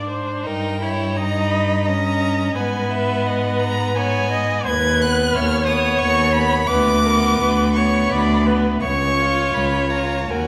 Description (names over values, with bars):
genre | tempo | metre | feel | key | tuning
classical, slow romantic movement for string quartet | 86 BPM | 3/4 | uneven beats, rubato | G# minor | A4 = 440 Hz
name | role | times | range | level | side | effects
rich violin | melody | 0.0-10.5 s | D#5 to G#6 | -26 LUFS | equal | none
clear violin | second line | 0.0-10.5 s | B3 to F#4 | -27 LUFS | equal | none
rich viola | accompaniment | 0.0-10.5 s | A#4 to D#5 | -24 LUFS | equal | none
rich cello | bass | 0.0-10.5 s | C#2 to G#2 | -23 LUFS | equal | none
room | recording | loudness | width
wet scoring stage reverb, RT60 1.9 s | none | -19 LUFS | mono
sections
0.0-10.5 A section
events
none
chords
0.5 D#7/G; 2.6 G#m; 4.7 B/D#; 6.7 Bm/D; 8.8 C#